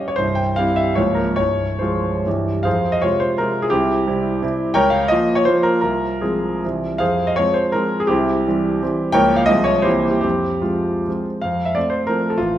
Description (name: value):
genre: classical, romantic triple-time dance for piano with dotted rhythms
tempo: 130-199 BPM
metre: 3/4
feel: rubato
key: F minor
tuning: A4 = 440 Hz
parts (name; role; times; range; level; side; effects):
- clear concert grand piano; solo; 0.0-12.6 s; C1 to G5; -16 LUFS; equal; none
room: wet recital hall reverb, RT60 1.6 s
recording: none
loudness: -16 LUFS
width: side -12 dB against mid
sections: 0.0-2.7 A section; 2.7-11.4 B section; 11.4-12.6 C section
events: none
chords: 0.2 C; 1.0 Bbm/Db; 1.4 Fm/C; 2.3 C; 2.7 Fm; 3.7 C; 4.8 Bbm/Db; 5.8 Fm/C; 6.6 C; 7.0 Fm; 8.1 C; 9.1 Bbm/Db; 9.5 Fm/C; 9.9 C7; 10.2 Fm; 11.4 F